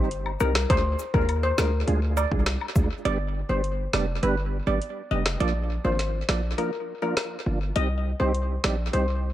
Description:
dancehall; 102 BPM; 4/4; straight; A4 = 440 Hz
tonewheel organ; accompaniment; 0.0-9.1 s; F3 to Ab4; -31 LUFS; right 4 dB; chorus vibrato, slow rotary speaker, tape echo
hard-hitting 808-style bass; bass; 0.0-9.3 s; F1 to Eb2; -26 LUFS; equal
afro-pop drum kit; drums; 0.1-9.1 s; hi-hat, kick drum, rim click, snare drum; -27 LUFS; equal; vintage 12-bit sampler grit, tape echo
woodblock and cabasa; percussion; 0.3-2.9 s; -37 LUFS; left 6 dB; tape echo
steel pan; melody; 0.4-9.1 s; Bb4 to Eb5; -29 LUFS; left 2 dB; tape echo
light reverb; echo-heavy mix; -23 LUFS; side -13 dB against mid
0.0-3.1 A section; 3.1-9.3 B section
break 3.1-9.3
0.0 Cm; 0.7 Ddim; 3.1 G; 5.4 Bb; 7.8 Cm
0.11 | 0.70 1.29 1.88 2.46 | 3.05 3.64 4.23 4.82 | 5.41 5.99 6.58 7.17 | 7.76 8.35 8.93

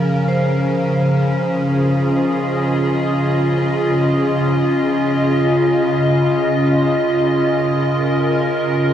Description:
ambient; free time; Db major; A4 = 439 Hz
evolving wavetable pad; sustained chords; 0.0-8.9 s; Db3 to Eb5; -15 LUFS; equal; chorus, built-in reverb
vibraphone with hard mallets; arpeggios; 0.0-5.5 s; F3 to C5; -24 LUFS; equal; diffuse ambient delay
wet shimmer reverb, RT60 7.9 s; dark, warm production; -14 LUFS; side -10 dB against mid
0.0-5.5 A section; 5.5-8.9 B section
0.0 Dbmaj13; 5.5 Db6
free time

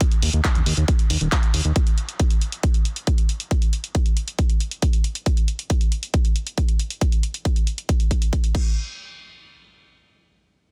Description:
uplifting trance; 137 BPM; 4/4; straight; A4 = 440 Hz
electronic kick drum; drums; 0.0-8.6 s; -21 LUFS; equal; overdrive
punchy analog drum machine; drums; 0.0-8.6 s; crash cymbal, handclaps, hi-hat; -31 LUFS; equal
fat analog bass; bass; 0.2-1.7 s; Eb1 to Eb2; -22 LUFS; equal; tube saturation, sidechain pumping
digital ambience; dense, heavily limited modern master; -22 LUFS; mono
0.0-8.8 A section; 8.8-10.7 B section
| 0.01 0.44 0.88 1.32 | 1.76 2.20 2.63 3.07 | 3.51 3.95 4.39 4.82 | 5.26 5.70 6.14 6.58 | 7.01 7.45 7.89 8.33

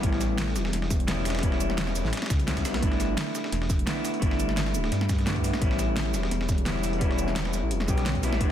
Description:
liquid drum and bass; 172 BPM; 4/4; straight; A4 = 441 Hz
vintage hollow-body jazz guitar; accompaniment; 0.0-8.5 s; G3 to G4; -30 LUFS; left 1 dB; ping-pong delay
swelling detuned saw bass; bass; 0.0-8.5 s; D1 to G2; -29 LUFS; equal
dusty soul sampler-style drum kit; drums; 0.0-8.5 s; hi-hat, snare drum; -36 LUFS; equal; high-pass filter on hats, small room ambience, high-pass filter on snare
electronic kick drum; drums; 0.0-8.5 s; -27 LUFS; equal; small room ambience
pop drum kit; drums; 0.0-8.5 s; hi-hat, shaker, snare drum; -33 LUFS; right 1 dB; small room ambience
light reverb, digital ambience; dense, heavily limited modern master; -24 LUFS; side -10 dB against mid
0.0-8.5 A section
0.0 A7; 2.8 G6; 5.6 A7
| 0.04 0.38 0.73 1.08 | 1.43 1.78 2.13 2.48 | 2.83 3.17 3.52 3.87 | 4.22 4.57 4.92 5.27 | 5.62 5.96 6.31 6.66 | 7.01 7.36 7.71 8.06 | 8.41

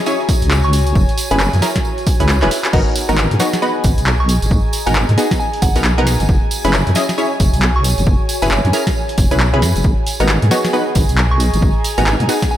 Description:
UK garage, two-step garage; 135 BPM; 4/4; swing 61% on 16ths; G# minor; A4 = 441 Hz
airy breathy pad; sustained chords; 0.0-12.6 s; G#5; -29 LUFS; right 1 dB; chorus, vintage 12-bit sampler grit, sidechain pumping
warbly tape-like pad; texture; 0.0-12.6 s; F#4 to A#5; -26 LUFS; equal; chorus, built-in reverb, sidechain pumping
punchy chord stab; stabs; 0.1-12.4 s; B3 to D#5; -19 LUFS; equal; chorus, analog delay
tambourine; percussion; 0.1-12.6 s; -28 LUFS; right 4 dB
electronic kick drum; drums; 0.3-12.5 s; -16 LUFS; equal
punchy analog drum machine; drums; 0.3-12.5 s; crash cymbal, handclaps, hi-hat, snare drum; -21 LUFS; equal
deep soft wobble bass; bass; 0.4-12.3 s; E1 to G#2; -15 LUFS; equal; chorus
soft synth bell; melody; 0.6-1.5, 4.2-8.6, 11.3-12.6 s; F#5 to C#6; -25 LUFS; right 1 dB; chorus, analog delay
moderate lush hall reverb, RT60 1.6 s; dreamy mix soaked in reverb; -12 LUFS; side -12 dB against mid
0.0-2.7 A section; 2.7-12.6 A section
drop 0.0-2.7, 2.7-12.6; drum fill 2.4-2.7
0.0 F#9sus4; 2.7 G#m9; 6.3 F#9sus4; 9.8 G#m9
0.07 0.51 | 0.95 1.40 1.84 2.29 | 2.73 3.18 3.62 4.07 | 4.51 4.96 5.40 5.84 | 6.29 6.73 7.18 7.62 | 8.07 8.51 8.96 9.40 | 9.84 10.29 10.73 11.18 | 11.62 12.07 12.51

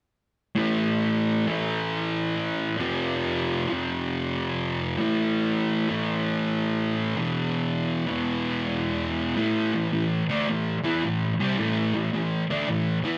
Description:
rock; 109 BPM; 4/4; swing 66% on 8ths; A minor; A4 = 440 Hz
thick fuzz guitar; solo; 0.6-13.2 s; E2 to E4; -26 LUFS; equal; distortion
moderate large studio reverb, RT60 1.1 s; -26 LUFS; mono
0.6-9.4 A section; 9.4-13.2 B section
0.6 A5; 2.8 F5; 5.0 A5; 7.2 E5; 9.4 A5
| 0.57 1.12 1.67 2.22 | 2.77 3.32 3.87 4.42 | 4.97 5.52 6.07 6.62 | 7.17 7.73 8.28 8.83 | 9.38 9.93 10.48 11.03 | 11.58 12.13 12.68

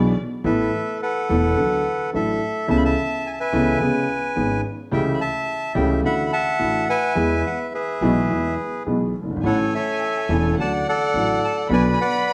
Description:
tango; 106 BPM; 4/4; rubato; A major; A4 = 436 Hz
warm violin; second line; 0.0-0.1, 9.4-12.3 s; D5 to B5; -31 LUFS; equal
warm grand piano; accompaniment; 0.0-11.9 s; E1 to A4; -24 LUFS; equal
upright bass; bass; 0.0-11.9 s; E1 to E2; -30 LUFS; equal
bandoneon; melody; 0.5-12.3 s; G#4 to B5; -25 LUFS; equal
wet large studio reverb, RT60 1.3 s; -21 LUFS; mono
0.4-12.3 A section
0.4 Asus2; 1.6 D; 2.7 Aadd9/C#; 3.8 C#7; 4.9 A7/C#; 6.0 Dadd9; 7.2 E; 9.4 A; 10.6 D; 11.7 Bm
| 0.45 1.01 1.58 2.14 | 2.70 3.25 3.81 4.37 | 4.92 5.48 6.04 6.60 | 7.17 7.74 8.30 8.87 | 9.44 10.01 10.58 11.14 | 11.70 12.27

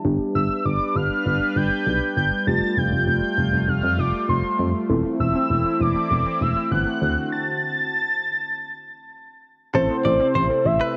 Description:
pop; 99 BPM; 4/4; straight; A minor; A4 = 444 Hz
muted felt-like synth keys; accompaniment; 0.0-11.0 s; A3 to A4; -30 LUFS; equal; chorus
sweeping resonant pad; sustained chords; 0.0-11.0 s; C3 to B4; -31 LUFS; equal; chorus
solid FM bass; bass; 0.0-10.8 s; E1 to F2; -25 LUFS; equal
fat analog lead; melody; 0.4-11.0 s; C5 to A6; -25 LUFS; equal; chorus
warbly dusty pluck; arpeggios; 4.9-10.6 s; D3 to A4; -33 LUFS; equal; chorus, digital delay
direct-recorded clean electric guitar; second line; 9.7-11.0 s; A4 to D5; -30 LUFS; equal; subtle chorus, digital delay
moderate plate reverb, RT60 2.8 s; worn, warbling old tape, cassette tape, warbly pitch drift; -22 LUFS; mono
0.0-9.7 A section; 9.7-11.0 B section
stop 7.3-9.7
0.0 G; 2.5 Fadd9; 4.9 Am/E; 7.0 D7; 9.7 Am
| 0.05 0.66 1.26 1.87 | 2.47 3.08 3.69 4.29 | 4.90 5.50 6.11 6.72 | 7.32 7.93 8.53 9.14 | 9.75 10.35 10.96

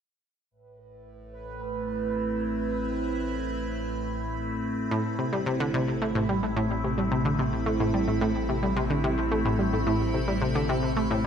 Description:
ambient, sequencer-driven space music; 109 BPM; 4/4; straight; A minor; A4 = 440 Hz
evolving wavetable pad; sustained chords; 1.4-11.3 s; A2 to B5; -29 LUFS; right 1 dB; phaser, built-in reverb
warm sub bass; bass; 0.5-11.3 s; A1; -35 LUFS; left 1 dB
bubbling stepped-filter texture; texture; 1.0-4.9 s; B4; -36 LUFS; right 6 dB; chorus, built-in reverb
Celtic harp; arpeggios; 4.9-11.3 s; G4 to A5; -46 LUFS; equal
analog pluck; riff; 4.9-11.3 s; A2 to A3; -26 LUFS; equal; chorus, tape echo
moderate plate reverb, RT60 2.6 s; -25 LUFS; side -8 dB against mid
0.5-4.9 A section; 4.9-11.3 B section
fade-in on sub bass 0.5-4.9
0.5 Amadd9
| 0.51 1.06 1.61 2.16 | 2.71 3.26 3.81 4.36 | 4.91 5.46 6.01 6.56 | 7.11 7.67 8.21 8.77 | 9.32 9.87 10.42 10.97

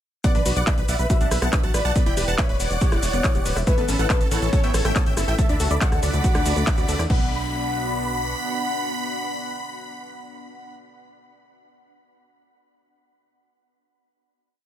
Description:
uplifting trance; 140 BPM; 4/4; straight; B minor; A4 = 441 Hz
big supersaw lead; melody; 0.2-10.7 s; A4 to B5; -28 LUFS; right 1 dB; phaser, sidechain pumping, digital delay
warm velvety synth lead; second line; 0.2-10.7 s; B4 to F#5; -30 LUFS; left 1 dB; chorus, vintage 12-bit sampler grit, digital delay
wide unison pluck; arpeggios; 0.2-7.3 s; A3 to E5; -31 LUFS; left 2 dB; sidechain pumping, digital delay
electronic kick drum; drums; 0.2-7.2 s; -21 LUFS; equal
techno drum kit; drums; 0.2-7.2 s; crash cymbal, handclaps, hi-hat, rim click, shaker; -28 LUFS; left 1 dB
plucky analog bass; bass; 0.3-8.3 s; D1 to E2; -25 LUFS; equal; sidechain pumping
lush unison pad; sustained chords; 3.7-10.7 s; F#3 to F#5; -32 LUFS; left 1 dB; chorus, phaser, sidechain pumping
digital ambience; -19 LUFS; side -11 dB against mid
0.2-7.1 drop; 7.1-10.5 final chord
drop 0.2-7.1; band accent 6.7
0.2 Bm; 2.0 E5; 3.7 Aadd9; 5.4 D; 7.1 Bm
| 0.24 0.67 1.10 1.53 | 1.96 2.38 2.81 3.24 | 3.67 4.10 4.53 4.96 | 5.38 5.81 6.24 6.67 | 7.10 7.53 7.96 8.38 | 8.81 9.24 9.67 10.10

